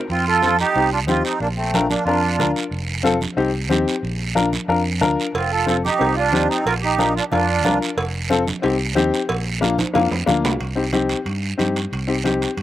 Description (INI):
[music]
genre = latin, cumbia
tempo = 183 BPM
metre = 4/4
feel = straight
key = C dorian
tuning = A4 = 440 Hz
[part]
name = accordion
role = melody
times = 0.1-2.5, 5.4-7.8 s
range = A3 to Bb4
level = -19 LUFS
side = right 4 dB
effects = light tremolo tuning
[part]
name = fingered electric bass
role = bass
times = 0.1-12.6 s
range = F1 to G2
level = -24 LUFS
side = right 1 dB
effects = none
[part]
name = guiro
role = percussion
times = 0.1-12.6 s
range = none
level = -29 LUFS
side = right 6 dB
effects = none
[part]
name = warm upright piano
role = accompaniment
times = 0.4-12.5 s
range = Bb3 to Bb4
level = -21 LUFS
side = left 4 dB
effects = none
[part]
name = congas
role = percussion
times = 0.4-12.6 s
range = none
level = -28 LUFS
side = right 2 dB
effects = none
[part]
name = cowbell and timbales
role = percussion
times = 5.3-12.6 s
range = none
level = -27 LUFS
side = right 3 dB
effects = slapback echo
[sound]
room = little or no reverb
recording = recorded outdoors, with no room sound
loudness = -17 LUFS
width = side -13 dB against mid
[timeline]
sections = 0.1-10.6 A section; 10.6-12.6 B section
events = drum fill 9.8-10.6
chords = 0.1 F; 0.7 Cm; 1.4 Bb; 2.7 F; 3.4 Cm; 4.0 Bb; 5.3 F; 6.0 Cm; 6.7 Bb; 8.0 F; 8.6 Cm; 9.3 Bb; 10.6 Cm